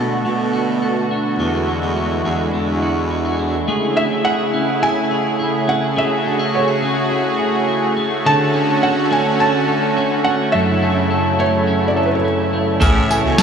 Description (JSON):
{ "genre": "dream pop", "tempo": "105 BPM", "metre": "4/4", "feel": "straight", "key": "A major", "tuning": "A4 = 439 Hz", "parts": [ { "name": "lush unison pad", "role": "sustained chords", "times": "0.0-13.4 s", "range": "C#3 to G#4", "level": "-19 LUFS", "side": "right 1 dB", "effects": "chorus" }, { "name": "clean electric guitar", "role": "arpeggios", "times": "0.0-13.4 s", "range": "F#2 to A4", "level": "-20 LUFS", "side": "equal", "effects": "wide subtle chorus, diffuse ambient delay" }, { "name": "growling baritone saxophone", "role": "bass", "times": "0.0-3.6, 12.8-13.4 s", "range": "E2 to B2", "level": "-22 LUFS", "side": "right 1 dB", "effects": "none" }, { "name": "felt-muted upright piano", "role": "melody", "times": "4.0-13.4 s", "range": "B4 to A5", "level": "-20 LUFS", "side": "right 2 dB", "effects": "diffuse ambient delay" }, { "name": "twelve-string electric guitar", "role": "accompaniment", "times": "12.8-13.4 s", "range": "A3 to E4", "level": "-22 LUFS", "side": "right 2 dB", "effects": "tremolo, ensemble chorus" }, { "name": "booming analog drum machine", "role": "drums", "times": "12.8-13.4 s", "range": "kick drum, snare drum, tambourine, toms", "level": "-15 LUFS", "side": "equal", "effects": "overdrive" }, { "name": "drifting glass-harmonics texture", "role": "texture", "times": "13.2-13.4 s", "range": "C#5", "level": "-28 LUFS", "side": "equal", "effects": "chorus, built-in reverb" } ], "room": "wet huge ambient reverb, RT60 8.8 s", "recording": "dreamy mix soaked in reverb, studio reverb", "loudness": "-15 LUFS", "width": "side -7 dB against mid", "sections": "0.0-3.7 A section; 3.7-13.4 B section", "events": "none", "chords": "0.0 Bm7; 1.4 E9; 3.7 Amaj7; 8.3 Dmaj7; 10.5 F#m7; 12.8 Amaj7" }